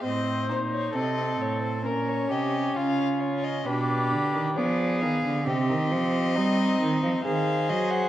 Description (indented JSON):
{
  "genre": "classical, baroque-style fugue for string quartet",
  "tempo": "67 BPM",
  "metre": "4/4",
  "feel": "straight",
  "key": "unclear",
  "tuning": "A4 = 439 Hz",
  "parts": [
    { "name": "rich violin", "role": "melody", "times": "0.0-8.1 s", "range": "Bb4 to Gb5", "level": "-32 LUFS", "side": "left 5 dB", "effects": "none" },
    { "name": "dark violin", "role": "second line", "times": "0.0-8.1 s", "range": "Eb4 to C5", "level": "-30 LUFS", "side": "left 2 dB", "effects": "none" },
    { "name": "rich viola", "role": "accompaniment", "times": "0.0-8.1 s", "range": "B3 to Ab4", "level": "-28 LUFS", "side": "right 1 dB", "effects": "none" },
    { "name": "dark cello", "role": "bass", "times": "0.0-8.1 s", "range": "A2 to G3", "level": "-29 LUFS", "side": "right 3 dB", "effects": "none" }
  ],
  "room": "moderate scoring stage reverb, RT60 1.9 s",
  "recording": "worn, warbling old tape, cassette tape, warbly pitch drift",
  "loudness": "-23 LUFS",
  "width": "side -12 dB against mid",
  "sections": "0.0-8.1 A section",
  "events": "none",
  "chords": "0.0 Adim; 1.9 Bbm; 3.7 G7/B; 5.5 Cm; 7.3 Cdim/Eb",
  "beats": "| 0.03 0.95 1.86 2.77 | 3.67 4.57 5.47 6.36 | 7.25"
}